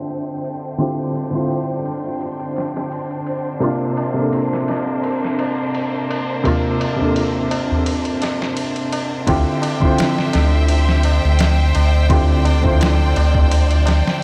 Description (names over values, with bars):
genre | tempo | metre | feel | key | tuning
trip hop | 85 BPM | 4/4 | swing 54% on 16ths | D minor | A4 = 441 Hz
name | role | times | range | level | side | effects
warm upright piano | accompaniment | 0.0-14.2 s | C3 to C5 | -23 LUFS | equal | tremolo, vintage 12-bit sampler grit, tape echo
bright studio violin section | sustained chords | 0.0-14.2 s | Bb3 to G5 | -28 LUFS | equal | none
wind-like tuned noise texture | texture | 0.0-9.3 s | C5 | -35 LUFS | equal | none
trip hop sampler-style drum kit | drums | 0.1-14.2 s | kick drum, ride cymbal, snare drum | -27 LUFS | equal | high-pass filter on cymbals, studio reverb, high-pass filter on kick, high-pass filter on snare
tabla | percussion | 3.6-14.2 s | none | -28 LUFS | equal | none
round analog bass | bass | 9.3-14.0 s | D2 | -17 LUFS | equal | tube saturation
room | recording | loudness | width
moderate huge ambient reverb, RT60 7.3 s | dreamy mix soaked in reverb, low-pass filter | -18 LUFS | mono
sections
0.0-9.3 A section; 9.3-14.2 B section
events
filter sweep 0.0-9.3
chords
0.0 Dm11; 3.6 C9sus4; 9.3 Dm11